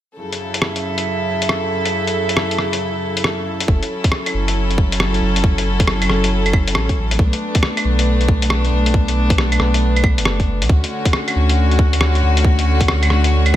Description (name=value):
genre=future garage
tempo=137 BPM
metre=4/4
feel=swing 65% on 16ths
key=F# minor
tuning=A4 = 440 Hz
part: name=rich chamber string section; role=sustained chords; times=0.2-13.6 s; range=F#2 to A4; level=-20 LUFS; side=left 1 dB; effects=sidechain pumping
part: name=drifting glass-harmonics texture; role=texture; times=0.5-3.7, 11.1-13.6 s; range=E5 to F#5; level=-27 LUFS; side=right 3 dB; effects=chorus, built-in reverb
part: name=lo-fi sampler-style drum kit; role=drums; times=0.3-13.6 s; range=claves, hi-hat, rim click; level=-20 LUFS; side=equal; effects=studio reverb
part: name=warm sub bass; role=bass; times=3.7-13.6 s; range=F#1 to D2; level=-17 LUFS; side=equal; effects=sidechain pumping
part: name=electronic kick drum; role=drums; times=3.7-13.6 s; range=none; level=-16 LUFS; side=equal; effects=overdrive, studio reverb
room=light reverb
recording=none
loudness=-14 LUFS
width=side -12 dB against mid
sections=0.2-3.7 A section; 3.7-13.6 B section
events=none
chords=0.2 F#m7; 7.2 Bm7; 10.7 Dmaj7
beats=| 0.18 0.62 1.06 1.50 | 1.94 2.37 2.81 3.25 | 3.69 4.12 4.56 5.00 | 5.44 5.88 6.31 6.75 | 7.19 7.63 8.07 8.50 | 8.94 9.38 9.82 10.26 | 10.69 11.13 11.57 12.01 | 12.45 12.88 13.32